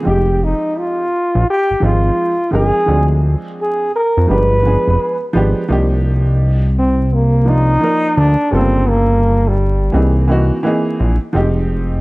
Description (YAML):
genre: hip hop, jazz-hop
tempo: 85 BPM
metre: 4/4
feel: swing 65% on 16ths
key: C minor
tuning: A4 = 440 Hz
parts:
  - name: warm upright piano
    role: accompaniment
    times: 0.0-12.0 s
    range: Db3 to D5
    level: -19 LUFS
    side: right 1 dB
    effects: none
  - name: breathy trombone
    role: melody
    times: 0.1-10.2 s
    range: G3 to B4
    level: -16 LUFS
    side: equal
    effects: slapback echo
  - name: fat analog bass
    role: bass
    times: 0.1-12.0 s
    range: F1 to F2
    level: -14 LUFS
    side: equal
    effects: none
room: studio reverb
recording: vinyl crackle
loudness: -12 LUFS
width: side -22 dB against mid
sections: 0.0-5.7 A section; 5.7-12.0 B section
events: trombone solo 5.7-12.0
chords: 0.1 Fm9; 2.9 Dm7b5; 4.3 G7b9; 5.7 Cm11; 8.5 Gm7b5; 9.9 C7alt; 11.4 Fm9